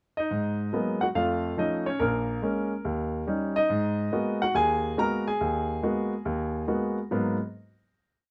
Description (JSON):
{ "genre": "solo jazz", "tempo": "141 BPM", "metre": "4/4", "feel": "swing 66% on 8ths", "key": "G# minor", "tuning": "A4 = 440 Hz", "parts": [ { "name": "warm baby grand piano", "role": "solo", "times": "0.2-7.4 s", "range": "A#1 to A#5", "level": "-28 LUFS", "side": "equal", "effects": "none" } ], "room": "little or no reverb", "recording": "close, detailed microphones", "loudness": "-28 LUFS", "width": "mono", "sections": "0.0-0.3 pickup bar; 0.3-7.1 A section; 7.1-8.3 final chord", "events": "none", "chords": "0.3 G#m9; 1.1 F7b13; 2.0 A#m7; 2.8 D#7; 3.7 G#m9" }